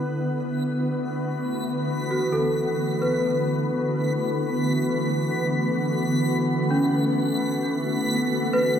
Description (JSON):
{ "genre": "ambient", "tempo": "free time", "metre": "none", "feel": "none", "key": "unclear", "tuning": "A4 = 444 Hz", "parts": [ { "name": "glassy FM pad", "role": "sustained chords", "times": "0.0-8.8 s", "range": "D3 to B4", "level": "-24 LUFS", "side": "equal", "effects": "ensemble chorus, built-in reverb" }, { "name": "large celesta", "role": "arpeggios", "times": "0.0-8.8 s", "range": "C#4 to B4", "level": "-27 LUFS", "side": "equal", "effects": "tape echo" }, { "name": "analog drone", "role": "drone", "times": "2.1-8.8 s", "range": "E3 to B3", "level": "-30 LUFS", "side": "right 1 dB", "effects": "chorus" }, { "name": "backwards swelling texture", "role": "texture", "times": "0.6-8.8 s", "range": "B6", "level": "-34 LUFS", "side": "equal", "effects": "built-in reverb" } ], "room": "wet concert hall reverb, RT60 1.9 s", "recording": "none", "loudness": "-22 LUFS", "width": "side -8 dB against mid", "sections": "0.0-8.8 A section", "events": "none", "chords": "0.0 Bm7" }